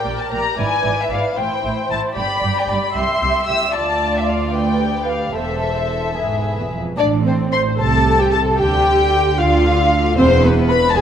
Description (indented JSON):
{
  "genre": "quick classical-period movement for string orchestra",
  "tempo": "75 BPM (dotted quarters)",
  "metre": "6/8",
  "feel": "straight",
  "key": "A minor",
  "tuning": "A4 = 440 Hz",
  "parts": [
    { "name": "dark studio violin section", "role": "melody", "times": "0.0-11.0 s", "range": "B4 to E6", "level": "-20 LUFS", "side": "left 4 dB", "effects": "none" },
    { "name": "warm symphonic violin section", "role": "second line", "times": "0.0-11.0 s", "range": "B3 to E5", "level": "-23 LUFS", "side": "left 1 dB", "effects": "none" },
    { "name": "dark symphonic viola section", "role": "accompaniment", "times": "0.0-11.0 s", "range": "B3 to E5", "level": "-21 LUFS", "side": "right 2 dB", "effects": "none" },
    { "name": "rich symphonic cello section", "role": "bass", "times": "0.1-11.0 s", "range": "C2 to D3", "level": "-23 LUFS", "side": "right 3 dB", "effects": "none" },
    { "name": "warm symphonic double bass section", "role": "bass", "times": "0.1-11.0 s", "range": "E1 to D2", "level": "-22 LUFS", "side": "right 3 dB", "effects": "none" }
  ],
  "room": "moderate concert hall reverb, RT60 1.9 s",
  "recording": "none",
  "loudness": "-15 LUFS",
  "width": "side -9 dB against mid",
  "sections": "0.0-7.0 A section; 7.0-11.0 B section",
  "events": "none",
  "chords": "0.0 Gm/Bb; 0.6 E7/G#; 1.4 Am; 2.2 G; 3.0 C; 3.7 Dm; 5.4 Am/E; 6.2 E; 7.0 Amadd11; 7.8 Am/C; 8.6 Dmadd11; 10.2 E5"
}